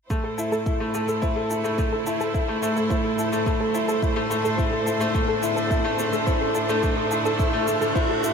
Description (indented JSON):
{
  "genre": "piano and strings electronica",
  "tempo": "107 BPM",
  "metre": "4/4",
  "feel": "straight",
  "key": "A minor",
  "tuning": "A4 = 440 Hz",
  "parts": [
    { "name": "rich symphonic string section", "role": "sustained chords", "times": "0.1-8.3 s", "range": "A2 to C5", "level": "-29 LUFS", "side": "right 2 dB", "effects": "sidechain pumping" },
    { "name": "clear grand piano", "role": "riff", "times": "0.1-8.3 s", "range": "A3 to A4", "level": "-24 LUFS", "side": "left 1 dB", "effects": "diffuse ambient delay" },
    { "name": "electronic kick drum", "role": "drums", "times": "0.1-8.1 s", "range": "none", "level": "-25 LUFS", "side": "right 1 dB", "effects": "small room reverb" },
    { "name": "shaker", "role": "drums", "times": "0.1-8.3 s", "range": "none", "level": "-41 LUFS", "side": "left 1 dB", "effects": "high-pass filter on perc, small room reverb" },
    { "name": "riser", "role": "sound effects", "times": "2.3-8.3 s", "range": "none", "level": "-34 LUFS", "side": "right 1 dB", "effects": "none" },
    { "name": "soft round pluck", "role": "arpeggios", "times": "0.2-8.3 s", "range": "A4 to A5", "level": "-31 LUFS", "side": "left 1 dB", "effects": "none" }
  ],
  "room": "wet huge ambient reverb, RT60 7.8 s",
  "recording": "dreamy mix soaked in reverb",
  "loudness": "-21 LUFS",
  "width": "side -6 dB against mid",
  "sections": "0.1-8.3 A section",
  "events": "build-up 0.1-8.3; riser 2.3-8.3",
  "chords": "0.1 Am"
}